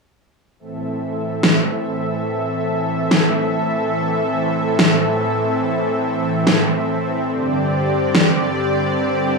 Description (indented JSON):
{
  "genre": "heavy wobble dubstep",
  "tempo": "free time",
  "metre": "none",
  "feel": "none",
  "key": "A minor",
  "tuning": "A4 = 440 Hz",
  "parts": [
    { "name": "supersaw pad", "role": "sustained chords", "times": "0.6-9.4 s", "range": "G2 to E5", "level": "-18 LUFS", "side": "equal", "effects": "low-pass filter" },
    { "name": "electronic snare drum", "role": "drums", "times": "1.4-8.2 s", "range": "none", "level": "-16 LUFS", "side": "equal", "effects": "overdrive" }
  ],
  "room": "moderate digital room reverb, RT60 1.2 s",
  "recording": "studio reverb",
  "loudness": "-16 LUFS",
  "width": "side -3 dB against mid",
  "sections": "0.6-9.4 A section",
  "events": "filter sweep on supersaw synth 0.6-9.4",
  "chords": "0.6 Am; 7.3 Gsus4",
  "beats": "free time"
}